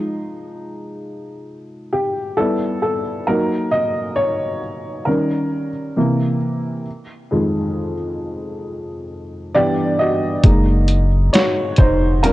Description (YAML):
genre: lo-fi hip hop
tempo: 67 BPM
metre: 4/4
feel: swing 59% on 16ths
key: unclear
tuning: A4 = 440 Hz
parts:
  - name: dark upright piano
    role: accompaniment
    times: 0.0-12.3 s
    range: F2 to Eb5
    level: -19 LUFS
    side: equal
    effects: low-pass filter
  - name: warm sub bass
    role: bass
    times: 10.4-12.3 s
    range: Eb1 to Gb1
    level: -16 LUFS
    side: equal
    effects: none
  - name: dusty soul sampler-style drum kit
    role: drums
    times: 10.4-12.3 s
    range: hi-hat, kick drum, snare drum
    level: -14 LUFS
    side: equal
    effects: none
room: light reverb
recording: worn, warbling old tape, cassette tape, warbly pitch drift, nothing above 10.7 kHz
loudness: -16 LUFS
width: side -17 dB against mid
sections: 0.0-10.4 A section; 10.4-12.3 B section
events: upright piano solo 0.0-10.4, 10.4-12.3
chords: 0.0 Fm7; 2.4 G69; 3.3 Gb6; 5.1 Eb7; 6.0 C7; 6.9 Fm7; 9.5 G6; 10.4 Gb69